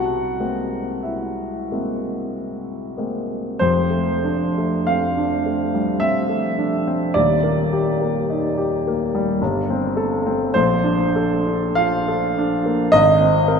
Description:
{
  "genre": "classical, impressionist solo piano",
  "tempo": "45-55 BPM",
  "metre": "3/4",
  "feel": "rubato",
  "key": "unclear",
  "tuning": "A4 = 440 Hz",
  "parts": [
    { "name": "warm baby grand piano", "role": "solo", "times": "0.0-13.6 s", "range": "Eb1 to Gb5", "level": "-18 LUFS", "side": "equal", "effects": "none" }
  ],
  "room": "wet cathedral reverb, RT60 5.2 s",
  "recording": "in a vast, echoing space, nothing above 10.3 kHz",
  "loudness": "-18 LUFS",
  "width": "side -6 dB against mid",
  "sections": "0.0-3.6 A section; 3.6-13.6 B section",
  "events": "none",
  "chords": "0.0 Caug7; 3.6 F69; 7.2 Ebmaj7; 9.4 Gsus24; 10.5 Bbmaj9; 12.9 Abadd9",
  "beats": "1.05 2.34 | 3.60 4.88 6.03 | 7.16 8.29 9.41 | 10.53 11.77 12.91"
}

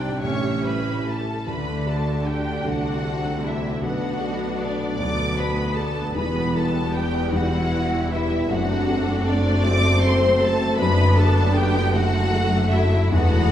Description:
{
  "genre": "cinematic",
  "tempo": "52 BPM (dotted quarters)",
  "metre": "6/8",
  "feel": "rubato",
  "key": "unclear",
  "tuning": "A4 = 441 Hz",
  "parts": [
    { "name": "warm symphonic violin section", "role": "melody", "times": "0.0-13.5 s", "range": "C5 to D6", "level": "-28 LUFS", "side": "left 1 dB", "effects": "none" },
    { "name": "mellow clarinet", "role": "second line", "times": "0.0-1.5 s", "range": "C#4 to D4", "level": "-29 LUFS", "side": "right 2 dB", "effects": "none" },
    { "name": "rich symphonic violin section", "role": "second line", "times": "0.0-13.5 s", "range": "D4 to G5", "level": "-29 LUFS", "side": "left 2 dB", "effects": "none" },
    { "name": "dark baby grand piano", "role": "accompaniment", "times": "0.0-13.5 s", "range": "E1 to E5", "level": "-26 LUFS", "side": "left 1 dB", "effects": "none" },
    { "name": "rich symphonic viola section", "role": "accompaniment", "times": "0.0-13.5 s", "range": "F#3 to G4", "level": "-28 LUFS", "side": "right 2 dB", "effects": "none" },
    { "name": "concert harp", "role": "arpeggios", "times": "0.0-13.5 s", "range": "E2 to D6", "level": "-28 LUFS", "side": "left 2 dB", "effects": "none" },
    { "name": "rich symphonic cello section", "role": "bass", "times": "0.0-13.5 s", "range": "D2 to D3", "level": "-27 LUFS", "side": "right 1 dB", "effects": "none" },
    { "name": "rich symphonic double bass section", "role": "bass", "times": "0.0-13.5 s", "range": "E1 to D2", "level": "-28 LUFS", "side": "right 2 dB", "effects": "none" },
    { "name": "mellow French horn section", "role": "sustained chords", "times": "1.5-13.5 s", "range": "G3 to D4", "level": "-30 LUFS", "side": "left 1 dB", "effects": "none" }
  ],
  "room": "wet recital hall reverb, RT60 1.7 s",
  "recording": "recorded in a church or concert hall",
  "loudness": "-19 LUFS",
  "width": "side -11 dB against mid",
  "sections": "0.0-1.5 A section; 1.5-13.5 B section",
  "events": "none",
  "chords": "0.2 A7; 1.5 D; 3.8 Bm7; 6.2 Em; 8.5 F#dim; 10.8 D/F#",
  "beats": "0.24 | 1.47 2.65 | 3.83 4.99 | 6.16 7.33 | 8.49 9.64 | 10.79 11.95 | 13.11"
}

